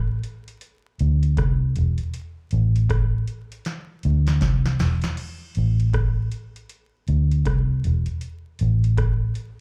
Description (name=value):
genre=roots reggae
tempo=79 BPM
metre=4/4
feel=swing 62% on 16ths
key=unclear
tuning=A4 = 440 Hz
part: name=vintage muted fingered electric bass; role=bass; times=0.0-9.3 s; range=E1 to D2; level=-22 LUFS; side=equal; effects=none
part: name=booming analog drum machine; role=drums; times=0.2-9.6 s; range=crash cymbal, hi-hat, kick drum, rim click, snare drum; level=-29 LUFS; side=equal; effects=none
room=little or no reverb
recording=live gig heard through the venue's PA, club reverb, vinyl crackle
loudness=-22 LUFS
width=mono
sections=0.0-5.2 A section; 5.2-9.6 B section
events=drum fill 3.7-5.2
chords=none